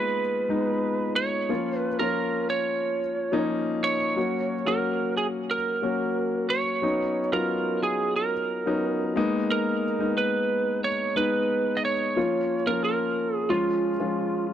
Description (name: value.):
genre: pop.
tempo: 90 BPM.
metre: 4/4.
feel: straight.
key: unclear.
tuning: A4 = 440 Hz.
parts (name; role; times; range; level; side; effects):
lightly driven lead guitar; melody; 0.0-14.5 s; E#4 to D#5; -26 LUFS; right 4 dB; none.
warm concert grand piano; accompaniment; 0.0-14.5 s; E#3 to F#4; -26 LUFS; left 3 dB; none.
room: light reverb, small room reverb.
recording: dry, close 1970s-style studio recording.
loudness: -23 LUFS.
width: side -10 dB against mid.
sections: 0.0-14.5 A section.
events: none.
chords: 0.0 G#madd9; 1.5 A#m; 4.2 F#; 6.8 Badd9; 9.2 G#madd9; 12.2 A#m; 13.5 C#.